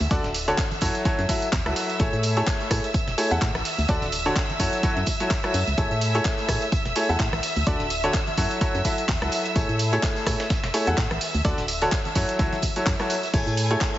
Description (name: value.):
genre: piano house.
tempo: 127 BPM.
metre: 4/4.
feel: swing 57% on 16ths.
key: A major.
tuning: A4 = 441 Hz.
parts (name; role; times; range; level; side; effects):
rich studio violin section; sustained chords; 0.0-14.0 s; E5 to G#6; -30 LUFS; equal; sidechain pumping.
organ-like FM bass; bass; 0.0-13.8 s; D1 to A2; -27 LUFS; equal; sidechain pumping.
house drum kit; drums; 0.0-14.0 s; crash cymbal, handclaps, hi-hat, rim click, tambourine; -30 LUFS; equal; none.
tambourine and congas; percussion; 0.0-13.9 s; none; -39 LUFS; right 4 dB; none.
bright upright piano; riff; 0.1-14.0 s; D3 to F#5; -26 LUFS; equal; sidechain pumping, dub echo.
dusty soul sampler-style drum kit; drums; 0.1-13.9 s; hi-hat, snare drum; -38 LUFS; equal; none.
electronic kick drum; drums; 0.1-13.9 s; none; -26 LUFS; equal; none.
room: light reverb.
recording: heavily compressed radio sound, nothing above 7.8 kHz.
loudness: -21 LUFS.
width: side -13 dB against mid.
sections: 0.0-14.0 A section.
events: none.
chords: 0.0 Dmaj7; 0.8 F#m7; 2.0 Amaj7; 3.7 Dmaj7; 4.6 F#m7; 5.8 Amaj7; 7.4 Dmaj7; 8.4 F#m7; 9.6 Amaj7; 11.2 Dmaj7; 12.2 F#m7; 13.3 Amaj7.